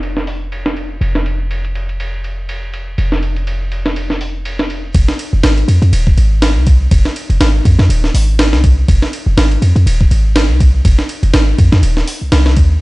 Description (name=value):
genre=breakbeat, breaks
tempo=122 BPM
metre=4/4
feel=swing 56% on 16ths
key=F minor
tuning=A4 = 440 Hz
part: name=warm 808-style bass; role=bass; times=0.0-12.8 s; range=Eb1 to F2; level=-12 LUFS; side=equal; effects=tube saturation
part: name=breakbeat sampler-style drum kit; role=drums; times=0.0-12.7 s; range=hi-hat, kick drum, ride cymbal, snare drum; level=-15 LUFS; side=equal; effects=low-pass filter on snare, studio reverb, low-pass filter on cymbals, low-pass filter on hats, low-pass filter on kick
room=little or no reverb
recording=dark, warm production, nothing above 10.8 kHz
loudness=-11 LUFS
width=side -21 dB against mid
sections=0.0-4.9 A section; 4.9-12.8 B section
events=drop 4.9-12.8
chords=none